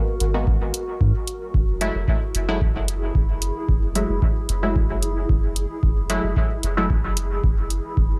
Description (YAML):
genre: dub techno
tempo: 112 BPM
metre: 4/4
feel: straight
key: unclear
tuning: A4 = 437 Hz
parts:
  - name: granular cloud pad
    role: sustained chords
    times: 0.0-8.2 s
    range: E4 to A#4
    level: -34 LUFS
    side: equal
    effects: built-in reverb, sidechain pumping
  - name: filtered dub chord stab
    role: stabs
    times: 0.0-6.9 s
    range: F#3 to F#4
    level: -29 LUFS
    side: equal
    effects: chorus, phaser, vintage 12-bit sampler grit, sidechain pumping, dub echo
  - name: soft dub sub bass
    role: bass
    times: 0.2-8.2 s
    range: F#1 to G#2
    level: -27 LUFS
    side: equal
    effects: sidechain pumping
  - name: electronic hi-hat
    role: drums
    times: 0.2-7.8 s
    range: none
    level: -30 LUFS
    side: equal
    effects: none
  - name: electronic kick drum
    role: drums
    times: 0.5-8.1 s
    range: none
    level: -24 LUFS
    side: equal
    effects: none
room: digital ambience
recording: none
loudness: -22 LUFS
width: mono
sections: 0.0-8.2 A section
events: none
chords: 0.0 G#m9; 1.5 F#m9